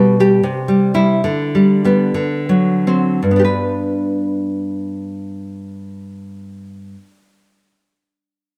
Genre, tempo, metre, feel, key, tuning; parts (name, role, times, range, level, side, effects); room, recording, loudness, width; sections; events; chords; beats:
romantic piece for solo classical guitar; 53-82 BPM; 2/4; rubato; G major; A4 = 440 Hz
nylon-string guitar; solo; 0.0-7.2 s; G2 to B4; -17 LUFS; equal
wet spring reverb, RT60 1.6 s; heard from further back in the room; -16 LUFS; mono
0.0-3.2 A section; 3.2-7.7 B section
slowing down 0.0-3.2
0.4 C; 1.2 G/D; 2.2 D7; 3.2 G
0.44 | 1.24 2.15 | 3.24 4.36 | 5.47 6.58